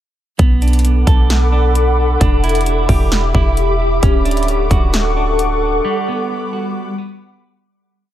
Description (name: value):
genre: hip hop, atmospheric cloud-rap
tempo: 132 BPM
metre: 4/4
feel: half-time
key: B minor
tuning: A4 = 442 Hz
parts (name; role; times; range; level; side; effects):
- ethereal airy pad; sustained chords; 0.9-7.6 s; G3 to D6; -18 LUFS; left 2 dB; ensemble chorus, built-in reverb, sidechain pumping
- clean electric guitar; arpeggios; 0.4-7.7 s; G3 to A4; -23 LUFS; right 7 dB; phaser, digital delay
- clean 808-style bass; bass; 0.4-5.8 s; D1 to B1; -15 LUFS; equal; none
- big-room dance drum kit; drums; 0.4-5.5 s; hi-hat, kick drum, snare drum; -16 LUFS; equal; none
room: light reverb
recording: none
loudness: -12 LUFS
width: side -12 dB against mid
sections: 0.4-7.7 verse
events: break 5.8-7.7; fade-out 5.8-7.7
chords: 0.4 Bm7; 2.2 Em7; 4.0 Dmaj7; 5.8 Gmaj7